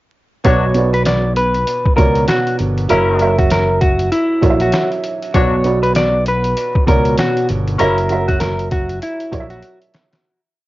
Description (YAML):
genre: hip hop, boom-bap hip-hop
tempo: 98 BPM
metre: 4/4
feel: swing 60% on 16ths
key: B harmonic minor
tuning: A4 = 439 Hz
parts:
  - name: dark upright piano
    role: accompaniment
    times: 0.4-10.3 s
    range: B2 to E5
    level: -19 LUFS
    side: right 4 dB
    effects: cassette tape, high-pass filter, low-pass filter
  - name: clear horn section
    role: stabs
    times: 0.4-8.0 s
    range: F#3 to F#4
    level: -25 LUFS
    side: left 6 dB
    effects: high-pass filter, low-pass filter, tape echo
  - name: trip hop sampler-style drum kit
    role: drums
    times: 0.4-10.2 s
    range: hi-hat, kick drum, snare drum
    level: -18 LUFS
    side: equal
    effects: cassette tape
  - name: clean electric guitar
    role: melody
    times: 0.5-9.8 s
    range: E4 to D5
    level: -17 LUFS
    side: left 1 dB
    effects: high-pass filter, low-pass filter
  - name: fretless electric bass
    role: bass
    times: 0.5-9.6 s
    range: F#1 to C#2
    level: -18 LUFS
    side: equal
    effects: analog chorus
room: little or no reverb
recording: home recording on cassette, vinyl crackle, nothing above 7.5 kHz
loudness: -13 LUFS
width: side -17 dB against mid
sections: 0.4-10.2 hook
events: fade-out 7.8-10.2; drum fill 9.6-10.2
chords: 0.4 Bmadd9; 2.9 F#7; 5.3 Bmadd9; 7.8 F#7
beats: | 0.45 1.06 1.67 2.29 | 2.90 3.51 4.12 4.73 | 5.35 5.96 6.57 7.18 | 7.79 8.41 9.02 9.63